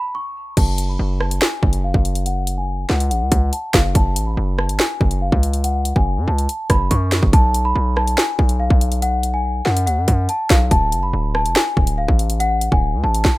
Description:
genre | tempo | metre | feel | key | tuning
hip hop, drill | 142 BPM | 4/4 | half-time | F# harmonic minor | A4 = 440 Hz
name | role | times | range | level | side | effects
celesta | melody | 0.0-13.4 s | E#5 to C#6 | -22 LUFS | left 2 dB | low-pass filter
distorted 808-style bass | bass | 0.6-13.2 s | D1 to F#2 | -19 LUFS | equal | distortion
drill drum kit | drums | 0.6-13.3 s | crash cymbal, hi-hat, kick drum, rim click, snare drum | -17 LUFS | equal | none
room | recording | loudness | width
little or no reverb | rough home demo mix | -16 LUFS | side -18 dB against mid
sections
0.6-13.4 A section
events
break 0.0-0.6; filter sweep on celesta 0.6-7.3; drum fill 6.9-7.3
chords
0.0 N.C.; 0.6 F#madd9; 7.3 B5; 10.7 D5

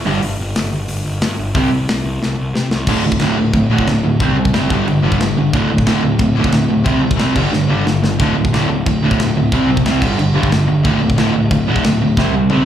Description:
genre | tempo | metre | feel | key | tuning
punk rock | 181 BPM | 4/4 | straight | unclear | A4 = 441 Hz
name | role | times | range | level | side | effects
fuzz picked electric bass | bass | 0.0-12.7 s | D1 to C3 | -20 LUFS | left 1 dB | overdrive
crunchy overdriven guitar | riff | 0.1-12.7 s | D2 to C4 | -16 LUFS | right 6 dB | none
distorted electric guitar | riff | 0.1-12.7 s | D2 to C4 | -18 LUFS | left 7 dB | overdrive
tight metal drum kit | drums | 0.2-12.6 s | crash cymbal, hi-hat, kick drum, snare drum, toms | -20 LUFS | left 1 dB | none
room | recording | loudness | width
light reverb | live gig heard through the venue's PA, club reverb | -13 LUFS | side -10 dB against mid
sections
0.0-2.9 A section; 2.9-12.7 B section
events
drum fill 2.2-2.9, 7.5-8.2, 12.2-12.7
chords
0.1 G5; 1.6 C5; 2.9 D5; 4.2 C5; 4.7 G5; 5.5 D5; 6.9 C5; 7.4 G5; 8.2 D5; 9.5 C5; 10.0 G5; 10.8 D5; 12.2 C5

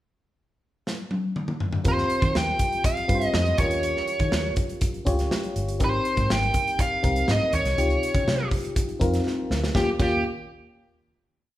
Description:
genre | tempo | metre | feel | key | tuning
polished 1980s jazz-funk pop | 122 BPM | 4/4 | straight | Eb mixolydian | A4 = 443 Hz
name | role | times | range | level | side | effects
modern studio drum kit | drums | 0.9-10.1 s | crash cymbal, hi-hat, kick drum, snare drum, toms | -26 LUFS | equal | none
FM electric piano | accompaniment | 1.8-10.2 s | C3 to Db5 | -28 LUFS | left 1 dB | chorus
vintage muted fingered electric bass | bass | 1.8-10.2 s | G1 to Eb3 | -28 LUFS | equal | none
nasal lead guitar with a parked wah | melody | 1.9-10.2 s | G4 to G5 | -25 LUFS | equal | overdrive
room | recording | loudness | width
wet large studio reverb, RT60 1.1 s | band playing live in one room | -22 LUFS | side -14 dB against mid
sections
0.0-1.9 pickup bar; 1.9-9.7 verse; 9.7-11.6 final chord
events
drum fill 0.9-1.9, 9.3-9.7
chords
0.0 N.C.; 1.9 Eb6; 3.6 Eb9; 5.8 Abmaj9; 7.8 Dbmaj9#11; 9.7 Eb9

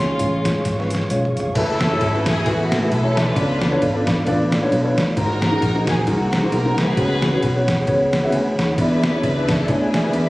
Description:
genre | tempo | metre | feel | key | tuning
uptempo gospel | 133 BPM | 4/4 | swing 56% on 8ths | F# minor | A4 = 440 Hz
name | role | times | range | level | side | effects
warm studio string section | melody | 0.0-10.3 s | G#3 to B4 | -25 LUFS | left 1 dB | none
dark upright piano | accompaniment | 0.0-10.3 s | G#2 to B5 | -22 LUFS | left 1 dB | none
mellow tonewheel organ | sustained chords | 0.0-10.3 s | G#4 to C#6 | -25 LUFS | right 1 dB | fast rotary speaker, chorus vibrato
fingered electric bass | bass | 0.0-10.3 s | E#1 to E2 | -23 LUFS | equal | none
trip hop sampler-style drum kit | drums | 0.2-10.3 s | crash cymbal, hi-hat, kick drum, ride cymbal, snare drum, toms | -22 LUFS | equal | overdrive
room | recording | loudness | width
moderate recital hall reverb, RT60 1.6 s | recorded on a phone in the room, studio reverb | -16 LUFS | side -19 dB against mid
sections
0.0-1.6 A section; 1.6-10.3 B section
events
drum fill 0.7-1.6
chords
0.0 C#; 1.6 F#m11; 3.4 C#7b9b13; 5.2 G#9; 7.0 C#7sus4; 8.8 E7

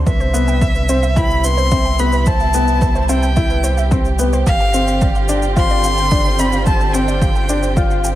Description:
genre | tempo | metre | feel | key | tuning
piano and strings electronica | 109 BPM | 4/4 | straight | C major | A4 = 440 Hz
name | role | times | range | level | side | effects
dark studio string section | sustained chords | 0.0-8.2 s | C3 to G4 | -24 LUFS | right 2 dB | sidechain pumping, shimmer reverb
warbly dusty pluck | arpeggios | 0.0-8.1 s | B4 to G5 | -26 LUFS | right 3 dB | chorus, sidechain pumping, tape echo, shimmer reverb
warm sub bass | bass | 0.0-8.2 s | G1 to C2 | -18 LUFS | equal | sidechain pumping
rich violin | melody | 0.1-8.0 s | E5 to C6 | -21 LUFS | left 1 dB | tape echo, shimmer reverb
electronic kick drum | drums | 0.1-7.9 s | none | -17 LUFS | equal | overdrive
shaker | drums | 0.1-8.2 s | none | -28 LUFS | right 2 dB | none
warm upright piano | riff | 0.3-8.0 s | B3 to F4 | -21 LUFS | left 2 dB | tape echo, shimmer reverb
room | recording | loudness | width
light reverb, studio reverb | none | -13 LUFS | side -14 dB against mid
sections
0.0-8.2 A section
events
none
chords
0.1 Cmaj7; 4.5 G7sus4

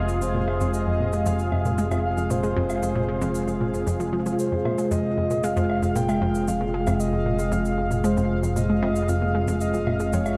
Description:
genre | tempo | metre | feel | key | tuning
ambient, sequencer-driven space music | 115 BPM | 4/4 | straight | F minor | A4 = 443 Hz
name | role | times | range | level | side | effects
breathy flute-like synth lead | melody | 0.0-10.4 s | C5 to G5 | -32 LUFS | equal | chorus, tape echo
sweeping resonant pad | sustained chords | 0.0-10.4 s | C3 to Ab4 | -28 LUFS | equal | chorus
fat analog bass | bass | 0.0-10.4 s | F1 | -31 LUFS | equal | none
bubbling stepped-filter texture | texture | 0.0-10.4 s | F5 | -40 LUFS | equal | chorus, built-in reverb
shaker and woodblock | percussion | 0.1-10.4 s | none | -40 LUFS | equal | tape echo
analog pluck | riff | 0.2-10.2 s | F2 to Ab3 | -29 LUFS | equal | chorus, vintage 12-bit sampler grit, tape echo
room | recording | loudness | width
wet cathedral reverb, RT60 5.8 s | in a vast, echoing space | -24 LUFS | mono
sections
0.0-10.4 A section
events
none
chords
0.0 Fm

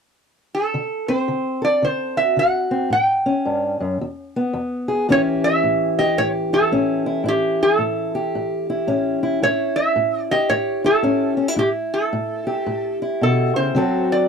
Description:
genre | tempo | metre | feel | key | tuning
acoustic country blues, solo or duo | 111 BPM | 4/4 | swing 63% on 8ths | A mixolydian | A4 = 440 Hz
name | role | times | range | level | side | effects
metal-body resonator slide guitar | melody | 0.5-14.3 s | G4 to G5 | -20 LUFS | right 2 dB | none
fingerpicked steel-string acoustic guitar | accompaniment | 0.7-14.3 s | E2 to A4 | -20 LUFS | left 1 dB | none
room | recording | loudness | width
moderate booth ambience, RT60 0.2 s | dry, close 1970s-style studio recording | -18 LUFS | side -6 dB against mid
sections
0.7-5.1 A section; 5.1-14.3 B section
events
none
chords
0.0 N.C.; 0.7 D7; 2.9 A7; 4.0 E; 5.1 A7; 13.8 D7

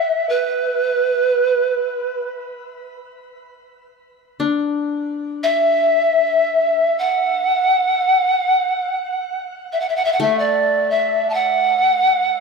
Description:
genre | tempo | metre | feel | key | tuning
world meditative, free-time meditation music | free time | none | none | unclear | A4 = 440 Hz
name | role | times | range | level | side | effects
breathy pan flute | melody | 0.0-12.4 s | B4 to A5 | -16 LUFS | right 1 dB | shimmer reverb, tape echo
qanun | texture | 0.0-12.4 s | A3 to E4 | -25 LUFS | left 5 dB | shimmer reverb
room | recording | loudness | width
wet studio reverb, RT60 0.6 s | dark, warm production | -16 LUFS | side -4 dB against mid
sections
0.0-4.0 A section; 4.0-12.4 A section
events
none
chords
none

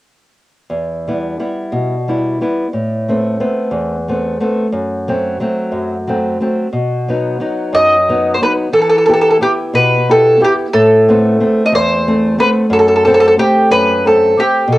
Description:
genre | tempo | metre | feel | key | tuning
italian folk | 60 BPM (dotted quarters) | 6/8 | straight | E harmonic minor | A4 = 441 Hz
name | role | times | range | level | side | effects
nylon-string guitar | accompaniment | 0.7-14.8 s | E2 to G4 | -15 LUFS | equal | cassette tape
mandolin | melody | 7.7-14.8 s | G4 to D#5 | -10 LUFS | equal | cassette tape
room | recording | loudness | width
light reverb, studio ambience | home recording on cassette | -11 LUFS | side -17 dB against mid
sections
0.7-8.7 A section; 8.7-14.8 B section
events
none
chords
0.7 Em; 2.7 Amadd9; 4.7 F#dim; 6.7 B; 8.7 Em; 10.7 Amadd9; 12.7 F#dim

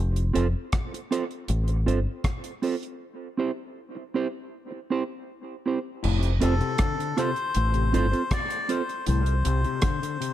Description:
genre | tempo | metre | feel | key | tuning
dub reggae | 79 BPM | 4/4 | straight | F major | A4 = 440 Hz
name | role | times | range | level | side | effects
deep dub fingered electric bass | bass | 0.0-9.6 s | F1 to C2 | -23 LUFS | equal | none
deep reggae drum kit | drums | 0.2-10.3 s | crash cymbal, hi-hat, kick drum, rim click | -29 LUFS | equal | none
mellow electric guitar | accompaniment | 0.3-8.8 s | C4 to C5 | -29 LUFS | right 5 dB | dub echo
overdriven clav | arpeggios | 6.0-10.3 s | A2 to D3 | -32 LUFS | left 9 dB | dub echo
melodica | melody | 6.4-10.3 s | A4 to D5 | -29 LUFS | left 3 dB | dub echo
room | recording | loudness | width
small room ambience | dark, warm production | -24 LUFS | side -12 dB against mid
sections
0.0-6.0 A section; 6.0-10.3 B section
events
break 0.0-6.0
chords
0.0 F; 3.0 C; 6.0 F; 9.1 Csus2

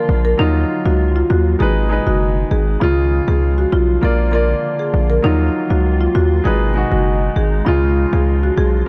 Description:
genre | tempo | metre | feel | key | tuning
dancehall | 99 BPM | 4/4 | straight | Eb minor | A4 = 439 Hz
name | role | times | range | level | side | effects
marimba with medium mallets | melody | 0.0-8.7 s | Eb4 to Bb4 | -22 LUFS | equal | digital delay
warm grand piano | accompaniment | 0.0-8.9 s | Db3 to F5 | -24 LUFS | equal | none
glassy FM pad | sustained chords | 0.0-8.9 s | Cb3 to F4 | -29 LUFS | equal | ensemble chorus, built-in reverb
hard-hitting 808-style bass | bass | 0.1-8.8 s | Gb1 to Eb2 | -18 LUFS | equal | none
room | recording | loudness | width
studio reverb | none | -16 LUFS | mono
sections
0.0-8.9 A section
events
none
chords
0.4 Ebmadd9; 1.6 Abm; 2.8 Db; 4.0 Bb; 5.2 Ebmadd9; 6.5 Abm; 7.7 Db

